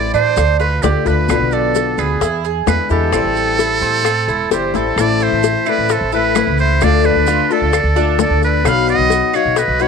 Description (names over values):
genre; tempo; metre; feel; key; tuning
latin, Cuban son and guajira; 131 BPM; 4/4; straight; A minor; A4 = 442 Hz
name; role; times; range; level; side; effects
trumpet with metal mute; melody; 0.0-9.9 s; G4 to F5; -18 LUFS; right 4 dB; slapback echo
fingerpicked old ladder-braced acoustic guitar; accompaniment; 0.0-9.9 s; B2 to F#4; -19 LUFS; left 12 dB; none
Cuban tres; arpeggios; 0.0-9.9 s; C4 to D5; -22 LUFS; right 14 dB; none
upright bass; bass; 0.0-9.9 s; E1 to A2; -19 LUFS; right 1 dB; none
maracas; percussion; 0.1-9.9 s; none; -31 LUFS; right 19 dB; none
bongos; percussion; 0.4-9.8 s; none; -21 LUFS; left 12 dB; none
claves; percussion; 0.4-9.6 s; none; -27 LUFS; right 17 dB; none
breathy bright jazz flute; second line; 4.5-9.9 s; C5 to B5; -24 LUFS; left 10 dB; none
room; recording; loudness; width
moderate spring reverb, RT60 1.7 s, studio ambience; 1960s-style stereo with parts hard left and right; -12 LUFS; side -6 dB against mid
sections
0.0-5.0 A section; 5.0-9.9 B section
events
drum fill 4.5-5.0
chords
0.4 Dm; 1.3 Bdim; 2.2 E7; 3.1 Am7; 5.0 Am; 6.8 Dm; 8.6 B